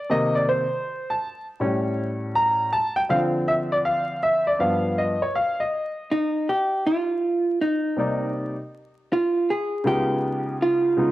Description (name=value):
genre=hip hop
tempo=80 BPM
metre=4/4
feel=swing 64% on 16ths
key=C dorian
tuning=A4 = 435 Hz
part: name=clear grand piano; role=accompaniment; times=0.0-11.1 s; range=G2 to Bb5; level=-22 LUFS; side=equal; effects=cassette tape
part: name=vintage hollow-body jazz guitar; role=melody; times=6.1-11.1 s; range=Eb4 to Ab4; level=-22 LUFS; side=right 1 dB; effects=cassette tape
room=moderate spring reverb, RT60 1.7 s, studio reverb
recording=home recording on cassette, vinyl crackle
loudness=-21 LUFS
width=side -15 dB against mid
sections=0.0-6.1 A section; 6.1-11.1 B section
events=grand piano solo 0.0-6.1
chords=0.1 Cm7; 1.6 A7; 3.1 Dm7; 4.6 Gaug7; 6.1 Cm9; 9.1 Db9